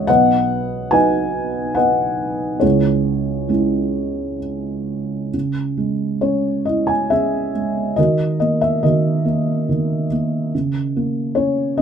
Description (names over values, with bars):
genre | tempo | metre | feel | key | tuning
classical, lyrical solo piano | 62-73 BPM | 3/4 | rubato | C# dorian | A4 = 439 Hz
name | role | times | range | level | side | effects
felt-muted upright piano | solo | 0.0-11.8 s | B1 to G#5 | -16 LUFS | right 1 dB | none
room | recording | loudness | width
little or no reverb | close, detailed microphones | -17 LUFS | side -8 dB against mid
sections
0.0-5.3 A section; 5.3-11.8 B section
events
none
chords
0.1 B; 2.6 C#m; 8.0 D#m; 10.5 C#5